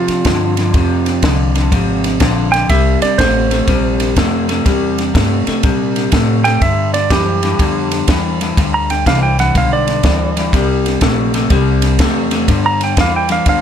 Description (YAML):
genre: electric blues shuffle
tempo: 123 BPM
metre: 4/4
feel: swing 66% on 8ths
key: C mixolydian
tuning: A4 = 444 Hz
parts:
  - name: clean lap steel guitar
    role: second line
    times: 0.0-13.6 s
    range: F4 to Bb5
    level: -17 LUFS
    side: right 5 dB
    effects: none
  - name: electric guitar through a small old amp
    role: riff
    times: 0.0-13.6 s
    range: F2 to A3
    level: -16 LUFS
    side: left 2 dB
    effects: spring reverb
  - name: upright bass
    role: bass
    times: 0.0-13.6 s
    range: Ab1 to Bb2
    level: -18 LUFS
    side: equal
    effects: none
  - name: compact cocktail drum kit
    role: drums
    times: 0.1-13.6 s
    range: kick drum, ride cymbal, snare drum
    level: -17 LUFS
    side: equal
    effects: none
room: light reverb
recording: none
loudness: -12 LUFS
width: side -8 dB against mid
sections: 0.0-13.6 A section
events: electric slide guitar solo 0.0-13.6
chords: 0.0 F5; 0.7 Fm; 2.7 C7; 6.6 G7; 10.5 C7; 12.5 G5